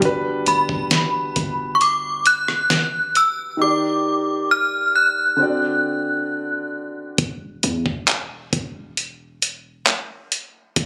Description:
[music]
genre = contemporary R&B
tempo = 67 BPM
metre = 4/4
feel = straight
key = G major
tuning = A4 = 440 Hz
[part]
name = warm grand piano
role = accompaniment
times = 0.0-7.2 s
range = D3 to D5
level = -26 LUFS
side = equal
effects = none
[part]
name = warm 808-style bass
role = bass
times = 0.0-10.9 s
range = D1 to E2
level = -32 LUFS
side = equal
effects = none
[part]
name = dusty soul sampler-style drum kit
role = drums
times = 0.0-10.9 s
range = handclaps, hi-hat, kick drum, rim click, snare drum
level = -22 LUFS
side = equal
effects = none
[part]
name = synth chime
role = melody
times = 0.5-6.7 s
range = B5 to F#6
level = -21 LUFS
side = equal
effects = ensemble chorus, tremolo, digital delay
[sound]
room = little or no reverb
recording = recorded on a phone in the room, club reverb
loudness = -21 LUFS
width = mono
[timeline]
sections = 0.0-7.2 A section; 7.2-10.9 B section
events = drums muted 3.6-7.2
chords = 0.0 Gmaj7; 3.6 Ebmaj7; 5.4 D7; 7.2 N.C.

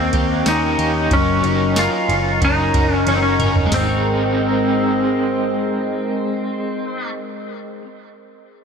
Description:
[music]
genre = dream pop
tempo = 92 BPM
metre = 4/4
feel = straight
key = Ab major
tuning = A4 = 440 Hz
[part]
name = clean lap steel guitar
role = melody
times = 0.0-7.1 s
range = C4 to F4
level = -20 LUFS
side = left 1 dB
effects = ping-pong delay
[part]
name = raw garage guitar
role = accompaniment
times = 0.0-7.9 s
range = Eb3 to Bb4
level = -25 LUFS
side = right 3 dB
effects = overdrive, tremolo, lush chorus
[part]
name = warbly tape-like pad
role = sustained chords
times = 0.0-7.1 s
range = Ab3 to Db6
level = -25 LUFS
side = right 3 dB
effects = chorus, built-in reverb
[part]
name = electric guitar at the edge of break-up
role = arpeggios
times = 0.0-7.9 s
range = Eb3 to Bb4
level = -24 LUFS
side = left 5 dB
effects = analog chorus, ping-pong delay
[part]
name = vintage muted picked electric bass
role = bass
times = 0.0-7.8 s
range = Gb1 to Eb2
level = -23 LUFS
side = equal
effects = none
[part]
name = soft vintage rhythm box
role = drums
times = 0.1-3.9 s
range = hi-hat, kick drum, ride cymbal, snare drum, tambourine, toms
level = -22 LUFS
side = equal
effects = none
[sound]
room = light reverb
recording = none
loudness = -16 LUFS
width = side -6 dB against mid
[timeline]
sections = 0.0-3.7 A section; 3.7-6.3 B section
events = drum fill 3.1-3.7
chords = 0.0 Eb7; 1.1 Gb6; 3.7 Abadd9

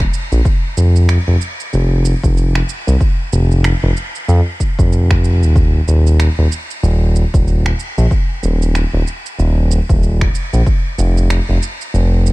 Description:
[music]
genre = organic downtempo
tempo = 94 BPM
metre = 4/4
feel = swing 58% on 16ths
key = unclear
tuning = A4 = 440 Hz
[part]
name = smooth synth bass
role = bass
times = 0.0-12.3 s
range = Eb1 to F2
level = -12 LUFS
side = equal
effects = sidechain pumping
[part]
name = electronic finger snaps and shaker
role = drums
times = 0.0-12.3 s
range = none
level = -25 LUFS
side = right 2 dB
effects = none
[part]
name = electronic kick drum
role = drums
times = 0.0-10.8 s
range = none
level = -14 LUFS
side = equal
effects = none
[sound]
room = digital ambience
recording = none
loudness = -12 LUFS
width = side -21 dB against mid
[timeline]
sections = 0.0-12.3 A section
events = none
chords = none

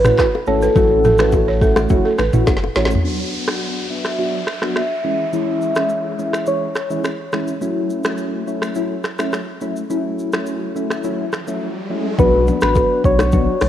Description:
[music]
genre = afrobeats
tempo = 105 BPM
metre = 4/4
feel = straight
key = A major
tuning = A4 = 439 Hz
[part]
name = soft struck synth lead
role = melody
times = 0.0-7.3, 12.2-13.7 s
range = A4 to F#5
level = -20 LUFS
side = left 1 dB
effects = chorus, low-pass filter, analog delay
[part]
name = soft electric-piano-like synth keys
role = accompaniment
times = 0.0-13.5 s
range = E3 to F#4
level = -21 LUFS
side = left 1 dB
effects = chorus, phaser, low-pass filter, cassette tape
[part]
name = warm sub bass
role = bass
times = 0.0-3.0, 12.2-13.7 s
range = F#1 to B1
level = -20 LUFS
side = equal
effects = none
[part]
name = afro-pop drum kit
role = drums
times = 0.0-13.7 s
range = finger snaps, handclaps, hi-hat, kick drum, rim click, shaker, snare drum, toms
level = -20 LUFS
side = equal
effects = cassette tape
[part]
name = balafon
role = riff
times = 0.2-2.8 s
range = A4 to C#5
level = -20 LUFS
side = right 4 dB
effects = cassette tape, analog delay
[part]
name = bongos and congas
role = percussion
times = 0.2-2.8, 12.2-13.7 s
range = none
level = -23 LUFS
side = left 5 dB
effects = none
[part]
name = downlifter and riser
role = sound effects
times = 3.0-12.2 s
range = none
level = -30 LUFS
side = left 1 dB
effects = none
[sound]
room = light reverb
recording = home recording on cassette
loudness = -16 LUFS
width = side -11 dB against mid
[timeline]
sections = 0.0-3.0 A section; 3.0-12.2 B section; 12.2-13.7 A section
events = drum fill 2.5-3.0; filter sweep 3.0-12.2; riser 10.9-12.2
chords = 0.0 A6; 3.0 Bm; 5.0 C#m; 7.6 A6; 12.2 Bm

